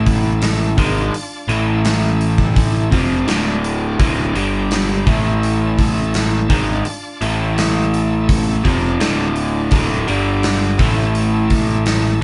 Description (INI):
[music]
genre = classic rock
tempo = 84 BPM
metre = 4/4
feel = straight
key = unclear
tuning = A4 = 437 Hz
[part]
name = bright tonewheel organ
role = sustained chords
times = 0.0-12.2 s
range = G3 to A5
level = -31 LUFS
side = equal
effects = slow rotary speaker, overdrive
[part]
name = crunchy overdriven guitar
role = riff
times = 0.0-12.2 s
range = D2 to A3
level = -22 LUFS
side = equal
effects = none
[part]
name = overdriven electric guitar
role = riff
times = 0.0-12.2 s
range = D2 to A3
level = -24 LUFS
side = equal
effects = none
[part]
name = growling picked electric bass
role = bass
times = 0.0-12.2 s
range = D1 to A1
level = -24 LUFS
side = equal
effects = overdrive
[part]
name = gated 80s drum kit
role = drums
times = 0.1-12.0 s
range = hi-hat, kick drum, snare drum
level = -21 LUFS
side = equal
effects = none
[sound]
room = moderate small room reverb, RT60 0.5 s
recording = band playing live in one room, nothing above 11.0 kHz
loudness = -17 LUFS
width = mono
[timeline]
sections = 0.0-12.2 A section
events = none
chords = 0.0 A5; 0.8 Dm; 1.5 A5; 2.9 Dm; 4.4 G5; 5.1 A5; 6.5 Dm; 7.2 A5; 8.6 Dm; 10.1 G5; 10.8 A5